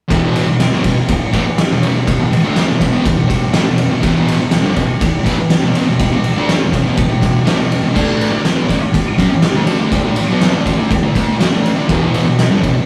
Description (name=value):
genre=garage rock duo or trio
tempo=122 BPM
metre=4/4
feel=straight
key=unclear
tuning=A4 = 440 Hz
part: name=thick fuzz guitar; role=riff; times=0.1-12.8 s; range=E2 to D4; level=-17 LUFS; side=equal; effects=distortion
part: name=oversized low-tuned drum kit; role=drums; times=0.1-12.7 s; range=crash cymbal, kick drum, ride cymbal, snare drum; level=-17 LUFS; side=equal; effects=none
room=moderate small room reverb, RT60 0.5 s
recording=rough rehearsal-room recording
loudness=-14 LUFS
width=mono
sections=0.1-12.9 A section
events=none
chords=0.1 E5; 8.0 D5; 11.9 E5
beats=| 0.11 0.60 1.09 1.58 | 2.07 2.56 3.05 3.54 | 4.03 4.52 5.01 5.50 | 5.99 6.48 6.97 7.46 | 7.96 8.45 8.94 9.43 | 9.92 10.41 10.90 11.40 | 11.89 12.38